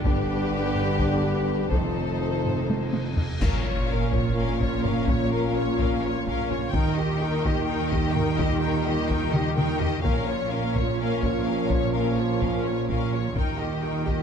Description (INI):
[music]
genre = cinematic, epic orchestral film score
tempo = 253 BPM (eighths)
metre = 7/8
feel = straight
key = Bb dorian from 3.4 s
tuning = A4 = 440 Hz
[part]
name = clear symphonic violin section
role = second line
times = 0.0-14.2 s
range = G4 to Db5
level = -32 LUFS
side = left 4 dB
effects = none
[part]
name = rich symphonic viola section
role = accompaniment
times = 0.0-14.2 s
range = Db4 to G4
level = -34 LUFS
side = right 1 dB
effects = none
[part]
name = dark trombone section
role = sustained chords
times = 0.0-14.2 s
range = Bb2 to B3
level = -32 LUFS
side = right 4 dB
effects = none
[part]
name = mellow French horn section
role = sustained chords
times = 0.0-14.2 s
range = Bb3 to G4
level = -32 LUFS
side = left 7 dB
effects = none
[part]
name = rich chamber double bass section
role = bass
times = 0.0-14.2 s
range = F1 to Eb2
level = -31 LUFS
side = right 4 dB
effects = none
[part]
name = warm symphonic cello section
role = bass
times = 0.0-14.2 s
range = F2 to Eb3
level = -29 LUFS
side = right 3 dB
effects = none
[part]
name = taiko ensemble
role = drums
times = 0.0-14.2 s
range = none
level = -28 LUFS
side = left 1 dB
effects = none
[part]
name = warm symphonic violin section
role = melody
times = 0.1-14.2 s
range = B4 to G5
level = -34 LUFS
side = left 6 dB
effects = none
[part]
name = cymbal swell and impact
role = sound effects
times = 2.8-5.1 s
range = none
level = -36 LUFS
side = equal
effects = none
[part]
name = clash cymbals and concert bass drum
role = percussion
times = 3.4-4.3 s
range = none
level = -31 LUFS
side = left 1 dB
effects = none
[sound]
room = wet scoring stage reverb, RT60 1.6 s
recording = dark, warm production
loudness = -22 LUFS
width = side -7 dB against mid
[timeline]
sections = 0.0-3.4 A section; 3.4-14.2 B section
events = drum fill 2.7-3.4, 9.3-10.0; cymbal swell 2.8-3.4; band accent 3.4-3.9; impact 3.4-5.1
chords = 0.0 G; 1.7 F7; 3.4 Bbm; 6.7 Eb; 10.0 Bbm; 13.3 Eb